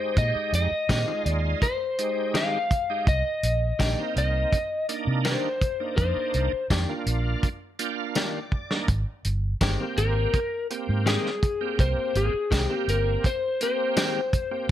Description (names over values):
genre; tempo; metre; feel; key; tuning
straight-eighth soul blues; 83 BPM; 4/4; straight; unclear; A4 = 440 Hz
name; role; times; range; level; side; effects
lightly driven lead guitar; melody; 0.0-14.7 s; Ab4 to F5; -27 LUFS; left 3 dB; plate reverb
bright tonewheel organ; accompaniment; 0.0-14.7 s; Ab3 to G5; -32 LUFS; right 6 dB; slow rotary speaker, overdrive, chorus vibrato, plate reverb
vintage muted fingered electric bass; bass; 0.2-13.2 s; G1 to C3; -25 LUFS; right 1 dB; none
warm soul drum kit; drums; 0.2-14.5 s; hi-hat, kick drum, snare drum, tambourine; -26 LUFS; right 1 dB; none
direct-recorded clean electric guitar; stabs; 0.9-14.2 s; Eb3 to G4; -31 LUFS; left 4 dB; plate reverb
room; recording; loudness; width
light reverb; none; -23 LUFS; side -12 dB against mid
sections
0.0-14.7 A section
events
tonewheel organ fill 7.4-8.9; drum fill 8.5-8.9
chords
0.0 Fm9; 3.1 Cm9; 8.9 Abmaj7